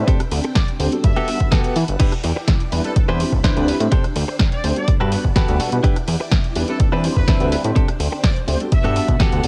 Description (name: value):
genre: filtered disco house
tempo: 125 BPM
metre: 4/4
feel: straight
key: unclear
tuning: A4 = 440 Hz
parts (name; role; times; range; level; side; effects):
- tine electric piano; accompaniment; 0.0-9.2 s; G3 to C5; -27 LUFS; equal; overdrive, phaser, sidechain pumping, cassette tape
- string machine, full ensemble; sustained chords; 0.0-9.5 s; C4 to B5; -34 LUFS; equal; phaser, ensemble chorus, sidechain pumping, cassette tape
- fat analog bass; bass; 0.0-9.5 s; E1 to E3; -23 LUFS; equal; tube saturation, sidechain pumping
- direct-recorded clean electric guitar; riff; 0.1-9.4 s; B3 to C5; -28 LUFS; equal; sidechain pumping, cassette tape
- electronic kick drum; drums; 0.1-9.3 s; none; -20 LUFS; equal; none
- punchy analog drum machine; drums; 0.1-9.5 s; crash cymbal, hi-hat, rim click, snare drum; -28 LUFS; equal; sidechain pumping on hats, sidechain pumping on cymbals
- brilliant horn section; melody; 0.6-9.2 s; A4 to E5; -32 LUFS; equal; sidechain pumping, cassette tape, tape echo
room: little or no reverb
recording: home recording on cassette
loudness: -18 LUFS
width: mono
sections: 0.0-9.5 A section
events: none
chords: 0.1 D7sus4; 1.0 Gmaj9; 2.0 Em7; 3.0 Cmaj9/E; 3.9 D7sus4; 4.9 Gmaj9; 5.8 Em7; 6.8 Cmaj9/E; 7.8 D7sus4; 8.7 Gmaj9